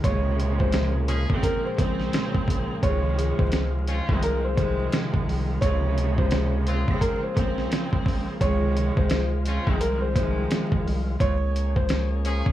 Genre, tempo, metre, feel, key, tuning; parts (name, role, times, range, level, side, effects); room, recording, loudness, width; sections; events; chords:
hip hop, boom-bap hip-hop; 86 BPM; 4/4; swing 61% on 16ths; A4 = 438 Hz
warm upright piano; melody; 0.0-12.1 s; Bb4 to Db5; -30 LUFS; equal; digital delay
clear horn section; stabs; 0.0-12.5 s; Db3 to Ab4; -34 LUFS; left 2 dB; digital delay
round analog bass; bass; 0.0-12.4 s; Bb1 to Db2; -25 LUFS; equal
dusty soul sampler-style drum kit; drums; 0.0-12.5 s; hi-hat, kick drum, snare drum; -25 LUFS; equal
warm studio string section; accompaniment; 0.1-11.1 s; C3 to C4; -28 LUFS; right 2 dB
tonewheel organ; sustained chords; 0.1-12.5 s; Bb2 to Ab4; -36 LUFS; left 1 dB; overdrive, slow rotary speaker
little or no reverb; vinyl crackle, studio ambience; -22 LUFS; side -13 dB against mid
0.0-12.5 A section
0.0 Bbm9/Db; 2.8 Dbmaj7; 5.6 Bbm9/Db; 8.4 Dbmaj7; 11.2 Bbm9/Db